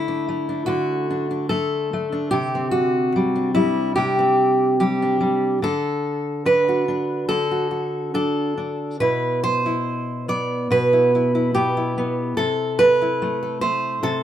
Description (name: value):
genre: folk, solo fingerstyle acoustic guitar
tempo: 72 BPM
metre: 4/4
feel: rubato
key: unclear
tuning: A4 = 438 Hz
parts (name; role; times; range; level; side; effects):
- fingerpicked steel-string acoustic guitar; solo; 0.0-14.2 s; B2 to D5; -18 LUFS; equal; none
room: moderate small room reverb, RT60 0.6 s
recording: band playing live in one room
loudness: -18 LUFS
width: side -10 dB against mid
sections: 0.0-14.2 A section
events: none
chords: 0.0 D; 2.3 Csus2; 5.6 D; 9.0 Bsus4; 12.4 Am/C